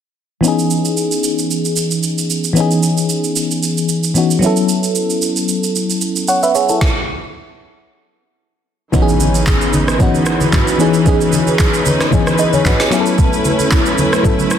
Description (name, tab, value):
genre	amapiano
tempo	113 BPM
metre	4/4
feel	swing 55% on 16ths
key	C# minor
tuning	A4 = 441 Hz
part	FM electric piano with auto-pan	accompaniment	0.4-14.6 s	E3 to F#5	-15 LUFS	left 1 dB	phaser
part	smooth R&B drum kit	drums	0.4-14.6 s	handclaps, kick drum, rim click, shaker, snare drum	-17 LUFS	right 1 dB	soft clipping on snare
part	warm studio string section	sustained chords	8.9-14.6 s	E3 to B4	-19 LUFS	right 1 dB	sidechain pumping
part	impact	sound effects	8.9-11.1 s	none	-21 LUFS	equal	none
part	congas	percussion	9.2-14.5 s	none	-21 LUFS	equal	none
room	light reverb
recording	dense, heavily limited modern master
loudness	-12 LUFS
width	side -9 dB against mid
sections	0.4-8.9 A section; 8.9-14.6 B section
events	stop 6.8-8.9; impact 8.9-11.1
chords	0.4 C#m9; 4.4 B9sus4; 8.9 C#m9; 12.9 B9sus4